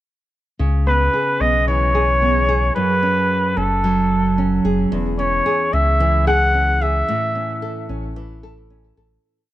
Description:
folktronica; 111 BPM; 4/4; straight; A4 = 441 Hz
nylon-string guitar; arpeggios; 0.6-9.5 s; E2 to A4; -21 LUFS; right 1 dB; low-pass filter, ping-pong delay
warm sub bass; bass; 0.6-9.2 s; E1 to C#2; -20 LUFS; equal
clear flugelhorn; melody; 0.9-7.9 s; A4 to F#5; -18 LUFS; equal; vintage 12-bit sampler grit, ping-pong delay
moderate small room reverb, RT60 0.6 s; -15 LUFS; side -14 dB against mid
0.6-9.2 groove
filter sweep on nylon-string guitar 0.6-9.2; fade-out 6.4-9.2
0.6 C#m7; 2.8 F#madd9; 4.9 E6; 7.1 A
| 0.59 1.14 1.68 2.22 | 2.76 3.30 3.84 4.38 | 4.92 5.46 6.00 6.54 | 7.08 7.62 8.16 8.70

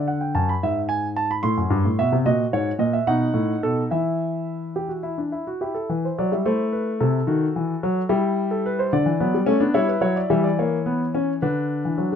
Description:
classical, baroque-style 3-part fugue for grand piano; 72 BPM (dotted quarters); 6/8; straight; E minor; A4 = 440 Hz
warm concert grand piano; solo; 0.0-12.2 s; F#2 to C6; -20 LUFS; left 1 dB
light reverb; close, detailed microphones; -20 LUFS; side -8 dB against mid
0.0-5.6 A section; 5.6-12.2 B section
0.0 Bm/D; 0.6 E/G#; 1.4 Am; 2.3 F#7; 3.1 B7; 3.9 N.C.; 5.6 Em; 6.5 Am; 7.3 D#dim; 8.1 Em/G; 8.9 Bm/D; 9.8 Em; 10.6 A#dim/E; 11.4 Bm/D
| 0.63 1.45 | 2.27 3.09 | 3.93 4.78 | 5.62 6.46 | 7.30 8.12 | 8.94 9.76 | 10.60 11.43

